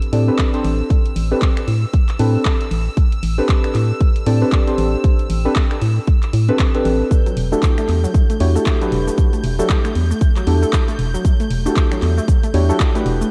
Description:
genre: deep house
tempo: 116 BPM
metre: 4/4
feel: swing 59% on 16ths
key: A dorian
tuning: A4 = 441 Hz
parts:
  - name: deep mellow chord stab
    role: stabs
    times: 0.0-13.3 s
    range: C4 to D5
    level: -23 LUFS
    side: equal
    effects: chorus, sidechain pumping, analog delay
  - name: house drum kit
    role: drums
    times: 0.0-13.3 s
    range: cabasa, finger snaps, handclaps, hi-hat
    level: -31 LUFS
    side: equal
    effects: vintage 12-bit sampler grit, studio reverb
  - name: clear studio violin section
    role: texture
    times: 0.0-13.3 s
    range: E6 to G6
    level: -37 LUFS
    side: equal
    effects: sidechain pumping
  - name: organ-like FM bass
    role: bass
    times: 0.1-13.2 s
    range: E1 to A2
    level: -19 LUFS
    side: equal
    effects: sidechain pumping
  - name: electronic kick drum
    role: drums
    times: 0.4-12.9 s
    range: none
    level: -18 LUFS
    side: equal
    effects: vintage 12-bit sampler grit, studio reverb
  - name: analog pluck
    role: arpeggios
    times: 7.3-13.3 s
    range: F#3 to A3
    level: -28 LUFS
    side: equal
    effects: chorus, sidechain pumping, analog delay
room: light reverb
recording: none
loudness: -17 LUFS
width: mono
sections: 0.0-13.3 A section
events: none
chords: 0.0 Am11; 7.1 Em11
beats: 0.39 | 0.90 1.42 1.94 2.45 | 2.97 3.49 4.01 4.52 | 5.04 5.56 6.08 6.59 | 7.11 7.63 8.14 8.66 | 9.18 9.70 10.21 10.73 | 11.25 11.77 12.28 12.80

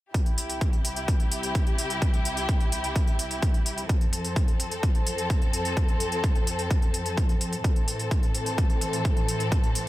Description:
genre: EDM, festival progressive house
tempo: 128 BPM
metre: 4/4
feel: straight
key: unclear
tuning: A4 = 440 Hz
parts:
  - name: warm symphonic string section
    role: sustained chords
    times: 0.1-9.9 s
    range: C2 to A4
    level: -29 LUFS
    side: left 1 dB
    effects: sidechain pumping
  - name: electronic hi-hat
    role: drums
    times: 0.1-9.8 s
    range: none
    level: -33 LUFS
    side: equal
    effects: none
  - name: electronic kick drum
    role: drums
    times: 0.1-9.6 s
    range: none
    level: -24 LUFS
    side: equal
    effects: none
room: little or no reverb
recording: none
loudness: -23 LUFS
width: side -16 dB against mid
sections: 0.1-9.9 A section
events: none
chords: 0.1 C; 3.9 F; 7.6 Am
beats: | 0.14 0.61 1.08 1.55 | 2.02 2.49 2.96 3.42 | 3.89 4.36 4.83 5.30 | 5.77 6.24 6.71 7.17 | 7.64 8.11 8.58 9.05 | 9.52

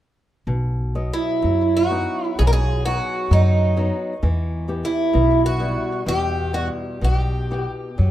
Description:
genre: fado-style ballad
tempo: 64 BPM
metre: 2/4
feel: rubato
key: B major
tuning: A4 = 440 Hz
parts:
  - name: flamenco guitar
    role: accompaniment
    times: 0.5-8.1 s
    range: B2 to D#5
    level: -29 LUFS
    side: left 2 dB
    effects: none
  - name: upright bass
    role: bass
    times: 0.5-8.1 s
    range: B1 to F#2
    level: -20 LUFS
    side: equal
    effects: none
  - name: picked twelve-string acoustic guitar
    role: melody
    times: 1.1-7.7 s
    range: D#4 to A#4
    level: -21 LUFS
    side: right 2 dB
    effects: tape echo
room: light reverb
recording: rough home demo mix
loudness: -18 LUFS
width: side -13 dB against mid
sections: 0.5-8.1 A section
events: none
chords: 0.5 B; 4.2 Em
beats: | 0.46 1.43 | 2.38 3.31 | 4.22 5.13 | 6.05 7.01 | 7.98

